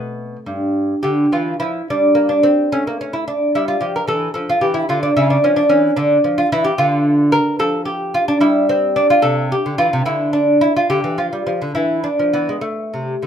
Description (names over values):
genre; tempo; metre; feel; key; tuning
classical, baroque-style dance for lute; 67-75 BPM (dotted quarters); 6/8; rubato; D minor, A minor from 7.6 s; A4 = 438 Hz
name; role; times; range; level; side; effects
lute; solo; 0.0-13.3 s; G2 to Bb4; -14 LUFS; equal; none
room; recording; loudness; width
light reverb; band playing live in one room; -14 LUFS; side -8 dB against mid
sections
0.0-1.1 A section; 1.1-13.3 A section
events
none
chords
0.0 Am; 1.1 Dm; 1.9 N.C.; 2.7 A5; 4.4 Dm; 5.2 C#m; 6.0 Dmadd9; 7.6 N.C.; 9.2 C; 10.1 N.C.; 10.9 Dmadd11; 11.7 E; 12.6 Am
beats
0.18 | 1.06 1.90 | 2.73 3.55 | 4.36 5.18 | 5.98 6.78 | 7.59 8.42 | 9.25 10.07 | 10.89 11.74 | 12.62